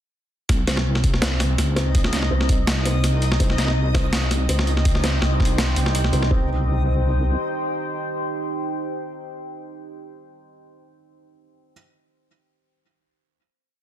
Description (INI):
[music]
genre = half-time drum and bass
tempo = 165 BPM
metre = 4/4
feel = swing 54% on 16ths, half-time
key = C phrygian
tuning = A4 = 438 Hz
[part]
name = deep soft wobble bass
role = bass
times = 0.5-7.4 s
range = C2 to Db2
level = -21 LUFS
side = equal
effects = chorus, tube saturation
[part]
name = boom bap sampler-style drum kit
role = drums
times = 0.5-6.3 s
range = hi-hat, snare drum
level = -24 LUFS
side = equal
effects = none
[part]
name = electronic kick drum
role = drums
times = 0.5-6.4 s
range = none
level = -20 LUFS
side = equal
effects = none
[part]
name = backwards swelling texture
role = texture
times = 1.5-6.3 s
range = Eb4 to Eb5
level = -32 LUFS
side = left 1 dB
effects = built-in reverb
[part]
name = felt-muted upright piano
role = arpeggios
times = 0.7-6.5 s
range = C4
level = -31 LUFS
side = right 1 dB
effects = tape echo
[part]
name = deep dark ambient pad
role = sustained chords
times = 4.4-9.6 s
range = Eb4 to G5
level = -28 LUFS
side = equal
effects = chorus, built-in reverb, sidechain pumping
[sound]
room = digital ambience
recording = dense, heavily limited modern master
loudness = -19 LUFS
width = side -11 dB against mid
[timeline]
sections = 0.5-6.3 drop; 6.3-9.2 final chord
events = drop 0.5-6.3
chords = 0.5 Cm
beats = | 0.49 0.85 1.22 1.58 | 1.94 2.31 2.67 3.04 | 3.40 3.76 4.13 4.49 | 4.85 5.22 5.58 5.94 | 6.31 6.67 7.04 7.40 | 7.76 8.13 8.49 8.85